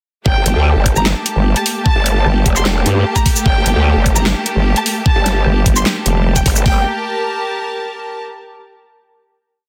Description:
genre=heavy wobble dubstep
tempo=150 BPM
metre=4/4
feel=half-time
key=G minor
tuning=A4 = 440 Hz
part: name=dark studio violin section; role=melody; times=0.3-6.8 s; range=G5 to C6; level=-24 LUFS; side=equal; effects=digital delay
part: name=dark symphonic string section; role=sustained chords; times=0.3-6.8 s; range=A3 to G4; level=-26 LUFS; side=equal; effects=sidechain pumping
part: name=growl bass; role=bass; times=0.3-6.8 s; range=F1 to D2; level=-17 LUFS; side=equal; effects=chorus, overdrive
part: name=dubstep drum kit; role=drums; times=0.3-6.8 s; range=hi-hat, kick drum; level=-17 LUFS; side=equal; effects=none
part: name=rich studio string section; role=texture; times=0.3-8.2 s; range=G4 to A5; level=-26 LUFS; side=equal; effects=sidechain pumping
part: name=vowel-sweep wobble bass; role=bass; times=0.5-6.4 s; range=F1 to G2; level=-16 LUFS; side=equal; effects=chorus, overdrive
part: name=dubstep drum kit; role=drums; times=0.5-6.6 s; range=handclaps, hi-hat, shaker, snare drum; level=-20 LUFS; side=equal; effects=none
room=light reverb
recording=dense, heavily limited modern master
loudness=-15 LUFS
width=mono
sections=0.3-6.7 drop; 6.7-8.3 final chord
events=drop 0.3-6.7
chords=0.3 Gmadd9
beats=| 0.26 0.66 1.06 1.46 | 1.86 2.26 2.66 3.06 | 3.46 3.86 4.26 4.66 | 5.06 5.46 5.86 6.26 | 6.66 7.06 7.46 7.86

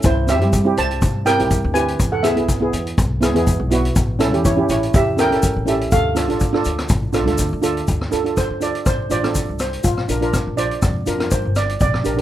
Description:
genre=calypso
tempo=122 BPM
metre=4/4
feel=swing 54% on 16ths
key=D minor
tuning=A4 = 442 Hz
part: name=steel pan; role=accompaniment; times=0.0-12.2 s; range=B3 to C5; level=-21 LUFS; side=right 2 dB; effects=plate reverb
part: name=upright bass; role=bass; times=0.0-12.2 s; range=G1 to G2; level=-23 LUFS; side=left 1 dB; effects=none
part: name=street-band drum kit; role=drums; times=0.0-12.2 s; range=hi-hat, kick drum, rim click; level=-21 LUFS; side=left 1 dB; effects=none
part: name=egg shaker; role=percussion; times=0.0-12.2 s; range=none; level=-31 LUFS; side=left 4 dB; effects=none
part: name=steel pan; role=melody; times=0.1-12.0 s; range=E4 to A5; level=-21 LUFS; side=right 2 dB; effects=plate reverb
room=light reverb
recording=rough home demo mix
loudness=-16 LUFS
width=side -12 dB against mid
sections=0.0-7.9 A section; 7.9-12.2 B section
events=steel pan solo 7.9-12.2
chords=0.0 C7; 2.0 E; 4.0 A7; 5.9 Dm; 7.9 Dm7; 9.8 Bb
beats=| 0.04 0.53 1.02 1.51 | 2.00 2.49 2.98 3.47 | 3.96 4.45 4.94 5.43 | 5.92 6.41 6.90 7.39 | 7.88 8.37 8.86 9.35 | 9.84 10.33 10.82 11.31 | 11.80

